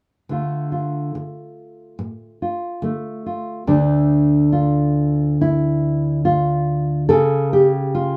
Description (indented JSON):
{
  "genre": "folk, solo fingerstyle acoustic guitar",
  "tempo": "71 BPM",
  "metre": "4/4",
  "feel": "rubato",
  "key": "D harmonic minor",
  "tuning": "A4 = 440 Hz",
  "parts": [
    { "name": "nylon-string guitar", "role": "solo", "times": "0.3-8.2 s", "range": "D2 to A4", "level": "-19 LUFS", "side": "equal", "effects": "none" }
  ],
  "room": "moderate studio ambience, RT60 0.5 s",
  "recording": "none",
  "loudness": "-19 LUFS",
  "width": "mono",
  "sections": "0.3-3.7 A section; 3.7-8.2 B section",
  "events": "none",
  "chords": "0.3 Dm; 3.7 Dmadd9; 7.1 N.C.",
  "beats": "| 0.30 1.16 1.99 2.83 | 3.68 4.55 5.41 6.26 | 7.10 7.94"
}